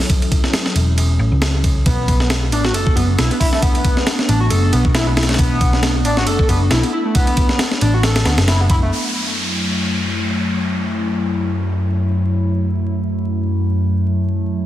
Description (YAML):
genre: breakbeat, breaks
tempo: 136 BPM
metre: 4/4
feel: swing 55% on 16ths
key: unclear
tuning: A4 = 438 Hz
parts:
  - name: warbly tape-like pad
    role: sustained chords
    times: 0.0-14.7 s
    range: F#2 to A4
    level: -20 LUFS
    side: left 1 dB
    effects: chorus, built-in reverb, sidechain pumping
  - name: breakbeat sampler-style drum kit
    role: drums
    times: 0.0-8.8 s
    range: hi-hat, kick drum, ride cymbal, snare drum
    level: -17 LUFS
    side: equal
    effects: none
  - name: hollow-body short-scale picked electric bass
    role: bass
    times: 0.8-8.9 s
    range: E1 to D2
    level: -16 LUFS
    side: equal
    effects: none
  - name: overdriven synth lead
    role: riff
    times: 1.9-8.9 s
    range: A3 to A4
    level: -21 LUFS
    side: equal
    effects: lush chorus, cassette tape, digital delay
  - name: downlifter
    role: sound effects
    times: 8.9-12.5 s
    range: none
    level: -24 LUFS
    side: equal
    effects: none
room: light reverb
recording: dense, heavily limited modern master, vinyl crackle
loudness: -14 LUFS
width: side -13 dB against mid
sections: 0.0-8.9 A section; 8.9-14.7 B section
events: none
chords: 0.0 F#m7; 1.9 Bm7; 8.9 F#m7